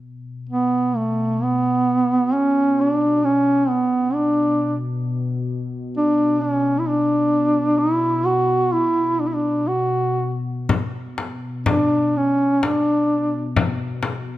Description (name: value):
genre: caucasian folk, Caucasian lament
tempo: 60-68 BPM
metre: 3/4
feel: rubato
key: B minor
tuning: A4 = 442 Hz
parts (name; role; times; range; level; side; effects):
- deep dark ambient pad; drone; 0.0-14.4 s; B2; -27 LUFS; left 3 dB; chorus, built-in reverb
- dark duduk; melody; 0.5-13.6 s; A3 to F#4; -18 LUFS; right 1 dB; none
- frame drum; percussion; 10.7-14.2 s; none; -22 LUFS; left 4 dB; none
room: light reverb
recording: none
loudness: -18 LUFS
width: side -15 dB against mid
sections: 0.0-14.4 A section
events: none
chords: none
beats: 0.46 1.42 | 2.34 3.24 4.12 | 5.02 5.94 6.86 | 7.78 8.71 9.68 | 10.68 11.66 12.62 | 13.57